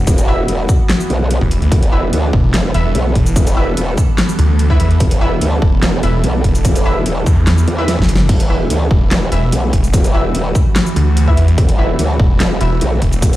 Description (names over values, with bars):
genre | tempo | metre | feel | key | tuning
heavy wobble dubstep | 146 BPM | 4/4 | half-time | E minor | A4 = 440 Hz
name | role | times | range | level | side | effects
evolving wavetable pad | sustained chords | 0.0-13.4 s | E3 to A4 | -22 LUFS | right 2 dB | chorus, built-in reverb, phaser, sidechain pumping
snarling distorted saw bass | bass | 0.0-13.2 s | E1 to E2 | -14 LUFS | equal | distortion, overdrive
growl bass | bass | 0.1-13.4 s | E1 to E2 | -16 LUFS | equal | chorus, overdrive
dubstep drum kit | drums | 0.1-13.4 s | crash cymbal, handclaps, hi-hat, shaker, snare drum | -20 LUFS | left 1 dB | studio reverb
electronic kick drum | drums | 0.1-13.3 s | none | -14 LUFS | equal | studio reverb
orchestra-hit-like synth stab | stabs | 0.3-12.8 s | E4 to E5 | -24 LUFS | equal | built-in reverb, dub echo
room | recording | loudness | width
little or no reverb | played on a big sound system in a bare room, stone room reverb | -11 LUFS | side -15 dB against mid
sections
0.0-13.4 A section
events
drum fill 7.9-8.3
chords
0.0 Emadd9